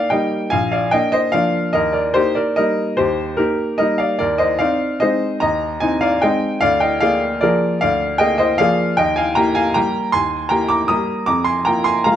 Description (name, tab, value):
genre	classical, piano waltz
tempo	139-163 BPM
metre	3/4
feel	rubato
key	Eb major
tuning	A4 = 439 Hz
part	clear upright piano	solo	0.0-12.2 s	Bb1 to Eb6	-15 LUFS	equal	none
room	light reverb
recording	close, detailed microphones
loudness	-15 LUFS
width	side -10 dB against mid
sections	0.0-12.2 A section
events	none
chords	0.0 Eb; 0.5 Bb; 1.7 Eb; 4.2 Ab/Eb; 6.6 Bb7/D; 9.0 Eb; 11.3 Bb5/F